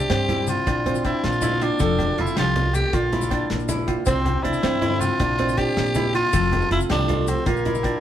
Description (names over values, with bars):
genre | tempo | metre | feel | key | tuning
highlife guitar band | 106 BPM (dotted quarters) | 12/8 | straight | unclear | A4 = 444 Hz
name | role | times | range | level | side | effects
growling tenor saxophone | melody | 0.0-8.0 s | Bb3 to G4 | -24 LUFS | equal | none
nylon-string guitar | accompaniment | 0.0-8.0 s | Bb2 to C5 | -30 LUFS | left 5 dB | none
qanun | arpeggios | 0.0-8.0 s | C4 to A4 | -25 LUFS | right 3 dB | none
congas | percussion | 0.0-7.8 s | none | -30 LUFS | left 1 dB | none
maracas | percussion | 0.0-7.8 s | none | -38 LUFS | left 6 dB | none
upright bass | bass | 0.1-7.9 s | F1 to G2 | -26 LUFS | equal | none
damped 70s drum kit | drums | 0.1-7.9 s | hi-hat, kick drum, snare drum | -28 LUFS | left 1 dB | none
agogo bells | percussion | 0.1-8.0 s | none | -36 LUFS | left 3 dB | none
room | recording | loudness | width
moderate studio reverb, RT60 1.0 s | band playing live in one room | -19 LUFS | side -11 dB against mid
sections
0.0-8.0 A section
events
none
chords
0.0 C; 0.7 Bb; 1.8 F; 2.9 Bb; 4.1 C; 5.2 Bb; 6.3 F; 7.5 Bb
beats
0.10 0.66 1.23 | 1.80 2.37 2.93 3.50 | 4.07 4.63 5.20 5.76 | 6.33 6.90 7.46